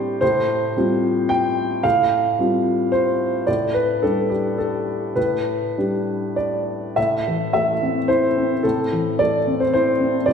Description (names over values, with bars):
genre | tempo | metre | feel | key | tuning
neoclassical minimalist piano | 98-112 BPM | 3/4 | rubato | A minor | A4 = 440 Hz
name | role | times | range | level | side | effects
dark upright piano | solo | 0.0-10.3 s | A2 to G5 | -18 LUFS | equal | none
room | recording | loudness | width
wet scoring stage reverb, RT60 2.0 s | recorded in a church or concert hall | -18 LUFS | side -6 dB against mid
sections
0.0-7.0 A section; 7.0-10.3 B section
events
none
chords
0.2 Fadd9/A; 3.5 Gadd9/A; 7.0 Am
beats
| 0.21 0.76 1.30 | 1.84 2.38 2.92 | 3.47 4.03 4.59 | 5.16 5.77 6.37 | 6.96 7.53 8.08 | 8.63 9.19 9.74 | 10.27